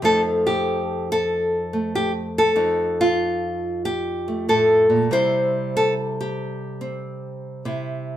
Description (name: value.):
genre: solo jazz.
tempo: 95 BPM.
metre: 4/4.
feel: swing 67% on 8ths.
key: unclear.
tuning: A4 = 440 Hz.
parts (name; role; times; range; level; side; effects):
nylon-string guitar; solo; 0.0-8.2 s; F2 to C5; -19 LUFS; equal; none.
room: moderate studio reverb, RT60 0.7 s.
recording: band playing live in one room.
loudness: -19 LUFS.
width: side -11 dB against mid.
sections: 0.0-8.2 A section.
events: none.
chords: 0.0 F7; 5.1 C.